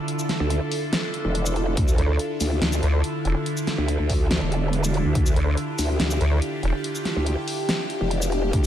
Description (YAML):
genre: heavy wobble dubstep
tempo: 142 BPM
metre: 4/4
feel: half-time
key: D minor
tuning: A4 = 440 Hz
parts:
  - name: evolving wavetable pad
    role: sustained chords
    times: 0.0-8.7 s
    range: D3 to A4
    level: -27 LUFS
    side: right 1 dB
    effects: phaser, built-in reverb, sidechain pumping
  - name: big-room dance drum kit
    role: drums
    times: 0.1-8.7 s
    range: hi-hat, shaker, snare drum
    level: -28 LUFS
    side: equal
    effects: none
  - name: growl bass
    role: bass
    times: 0.4-8.7 s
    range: E1 to D2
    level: -23 LUFS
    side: equal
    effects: chorus, overdrive
  - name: electronic kick drum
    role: drums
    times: 1.8-5.2, 8.5-8.6 s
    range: none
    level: -22 LUFS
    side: equal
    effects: none
  - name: vowel-sweep wobble bass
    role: bass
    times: 2.0-6.7 s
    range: E1 to D2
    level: -20 LUFS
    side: equal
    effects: chorus, overdrive
room: light reverb, digital ambience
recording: none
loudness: -21 LUFS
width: side -10 dB against mid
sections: 0.0-8.7 A section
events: none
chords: 0.0 Dmadd9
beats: | 0.08 0.50 0.93 1.35 | 1.77 2.19 2.62 3.04 | 3.46 3.88 4.31 4.73 | 5.15 5.57 6.00 6.42 | 6.84 7.26 7.69 8.11 | 8.53